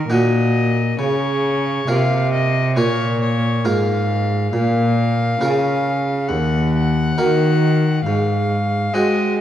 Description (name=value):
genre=classical, baroque-style sonata movement with continuo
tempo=68 BPM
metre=4/4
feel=straight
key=Bb minor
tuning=A4 = 440 Hz
part: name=rich violin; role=melody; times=0.0-9.4 s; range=Bb4 to Gb5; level=-23 LUFS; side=left 3 dB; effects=none
part: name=harpsichord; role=accompaniment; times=0.0-9.4 s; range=Eb2 to Bb4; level=-21 LUFS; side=equal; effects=none
part: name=rich cello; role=bass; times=0.0-9.4 s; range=Eb2 to Ab3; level=-18 LUFS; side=right 1 dB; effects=none
room=wet recital hall reverb, RT60 1.5 s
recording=dark, warm production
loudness=-16 LUFS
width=side -11 dB against mid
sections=0.0-9.4 A section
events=none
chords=0.0 Ebm; 1.0 Bbm; 6.3 Ebm; 8.1 Ab7